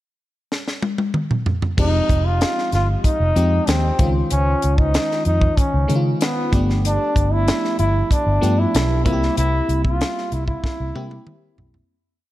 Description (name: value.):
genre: polished 1980s jazz-funk pop.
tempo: 95 BPM.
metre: 4/4.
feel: straight.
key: F minor.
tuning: A4 = 440 Hz.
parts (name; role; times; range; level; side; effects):
tight funk drum kit; drums; 0.5-11.9 s; crash cymbal, hi-hat, kick drum, snare drum, toms; -21 LUFS; equal; none.
bright trombone; melody; 1.8-11.5 s; B3 to F4; -22 LUFS; equal; none.
FM electric piano; accompaniment; 1.8-11.9 s; Eb3 to C5; -24 LUFS; left 2 dB; analog chorus.
vintage muted fingered electric bass; bass; 1.8-11.8 s; F1 to Db3; -19 LUFS; equal; none.
room: light reverb.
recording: dark, warm production.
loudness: -16 LUFS.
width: side -15 dB against mid.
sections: 0.0-1.8 pickup bar; 1.8-11.9 verse.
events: drum fill 0.5-1.8, 10.6-11.9; fade-out 9.4-11.9.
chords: 0.0 N.C.; 1.8 Fm7; 4.0 Dbmaj9; 6.5 G7; 9.1 C7.